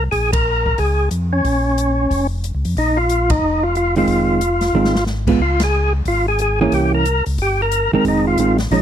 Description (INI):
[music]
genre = soul jazz organ trio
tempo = 182 BPM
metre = 4/4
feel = swing 62% on 8ths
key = F minor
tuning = A4 = 439 Hz
[part]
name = percussive tonewheel organ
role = melody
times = 0.0-8.8 s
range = Db4 to Bb4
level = -18 LUFS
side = left 1 dB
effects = overdrive, fast rotary speaker
[part]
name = mellow tonewheel organ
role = bass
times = 0.0-8.8 s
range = F1 to F2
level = -20 LUFS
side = equal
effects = slow rotary speaker
[part]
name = swinging big-band drum kit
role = drums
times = 0.1-8.8 s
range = crash cymbal, hi-hat, kick drum, ride cymbal, snare drum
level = -24 LUFS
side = left 1 dB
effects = none
[part]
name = hollow-body jazz guitar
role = accompaniment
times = 4.0-8.8 s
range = Eb3 to F4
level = -16 LUFS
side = right 4 dB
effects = none
[sound]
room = small room ambience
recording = dry, close 1970s-style studio recording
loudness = -15 LUFS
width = side -10 dB against mid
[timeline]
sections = 0.0-8.8 A section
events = band accent 0.3, 3.3, 5.6; drum fill 4.7-5.1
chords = 0.1 Bbm7; 4.1 Fm7; 5.4 Db5; 6.7 C7b9; 8.0 Fm7